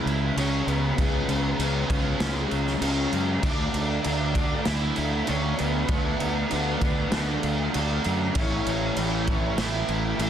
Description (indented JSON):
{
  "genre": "rock, shoegaze and dream pop",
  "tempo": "98 BPM",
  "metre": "4/4",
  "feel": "straight",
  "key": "unclear",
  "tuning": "A4 = 440 Hz",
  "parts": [
    { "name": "octave-fuzz lead guitar", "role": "melody", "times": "0.0-10.3 s", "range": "B3 to E4", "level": "-33 LUFS", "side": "left 1 dB", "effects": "distortion, tape echo" },
    { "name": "fuzz guitar", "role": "riff", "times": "0.0-10.3 s", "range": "A2 to D4", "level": "-28 LUFS", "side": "equal", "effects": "distortion, analog chorus" },
    { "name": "fuzz fingered electric bass", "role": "bass", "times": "0.1-10.3 s", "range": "A1 to F#2", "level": "-28 LUFS", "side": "equal", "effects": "overdrive" },
    { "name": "raw garage drum kit", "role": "drums", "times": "0.1-10.3 s", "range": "crash cymbal, kick drum, snare drum", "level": "-28 LUFS", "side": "equal", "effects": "none" }
  ],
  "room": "small room ambience",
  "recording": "dense, heavily limited modern master",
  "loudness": "-23 LUFS",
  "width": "side -9 dB against mid",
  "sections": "0.0-10.3 A section",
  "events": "none",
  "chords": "0.0 C#7(no3); 3.4 D5; 8.4 A"
}